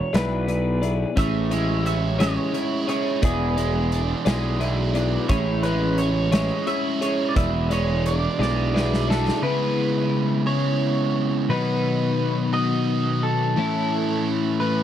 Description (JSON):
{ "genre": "indie rock", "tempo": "58 BPM (dotted quarters)", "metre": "6/8", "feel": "straight", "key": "unclear", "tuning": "A4 = 440 Hz", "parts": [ { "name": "electric guitar through a small old amp", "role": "melody", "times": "0.0-14.8 s", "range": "G#4 to E5", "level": "-27 LUFS", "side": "right 2 dB", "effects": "slapback echo" }, { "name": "twelve-string electric guitar", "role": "riff", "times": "0.1-14.8 s", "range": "A2 to D5", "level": "-24 LUFS", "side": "left 4 dB", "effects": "lush chorus" }, { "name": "fuzz picked electric bass", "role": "bass", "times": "0.1-9.3 s", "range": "E1 to B1", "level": "-24 LUFS", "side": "equal", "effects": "overdrive" }, { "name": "big rock drum kit", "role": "drums", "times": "0.1-9.4 s", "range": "hi-hat, kick drum, snare drum", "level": "-25 LUFS", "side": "equal", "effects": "none" }, { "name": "biting overdriven guitar", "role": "riff", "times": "1.2-14.8 s", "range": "E2 to G#4", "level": "-27 LUFS", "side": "right 7 dB", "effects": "lush chorus, slapback echo" } ], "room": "little or no reverb", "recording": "dry, close 1970s-style studio recording", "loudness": "-20 LUFS", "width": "side -10 dB against mid", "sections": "0.0-9.4 A section; 9.4-14.8 B section", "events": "drum fill 8.4-9.4", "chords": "0.0 E7; 1.2 Amaj7; 3.2 E7; 5.3 Amaj7; 7.4 E7; 9.4 C#m7; 11.5 B; 13.6 A" }